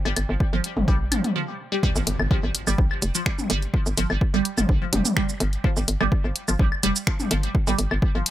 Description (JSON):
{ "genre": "minimal techno", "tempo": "126 BPM", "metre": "4/4", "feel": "straight", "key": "G minor", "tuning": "A4 = 443 Hz", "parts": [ { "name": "deep dark ambient pad", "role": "texture", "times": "0.0-1.4 s", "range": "G4 to G5", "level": "-48 LUFS", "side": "right 1 dB", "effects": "none" }, { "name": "resonant blip pluck", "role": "riff", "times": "0.1-8.2 s", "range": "F3 to G3", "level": "-28 LUFS", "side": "right 2 dB", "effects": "phaser, lush chorus, sidechain pumping, dub echo" }, { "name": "hollow knocking FM bass", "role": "bass", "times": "0.1-8.2 s", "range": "F1 to Bb1", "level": "-24 LUFS", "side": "equal", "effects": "tube saturation, sidechain pumping" }, { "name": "electronic claves and toms", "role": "percussion", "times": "0.1-8.0 s", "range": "none", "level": "-28 LUFS", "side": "left 2 dB", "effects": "dub echo" }, { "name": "punchy analog drum machine", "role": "drums", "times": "0.2-8.3 s", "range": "finger snaps, hi-hat, shaker", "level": "-26 LUFS", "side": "equal", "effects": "overdrive" }, { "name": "electronic kick drum", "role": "drums", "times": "0.4-8.1 s", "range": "none", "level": "-22 LUFS", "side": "equal", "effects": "overdrive" }, { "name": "impact", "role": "sound effects", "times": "1.8-3.7 s", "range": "none", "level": "-34 LUFS", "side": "equal", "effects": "none" } ], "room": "little or no reverb", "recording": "echo-heavy mix", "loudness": "-20 LUFS", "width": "side -13 dB against mid", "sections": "0.0-1.8 A section; 1.8-8.3 B section", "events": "break 1.4-1.8; drop 1.8-8.3; impact 1.8-3.7", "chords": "0.0 Gm; 1.8 N.C.", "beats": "0.40 0.88 1.36 | 1.83 2.31 2.78 3.26 | 3.74 4.21 4.69 5.17 | 5.64 6.12 6.59 7.07 | 7.55 8.02" }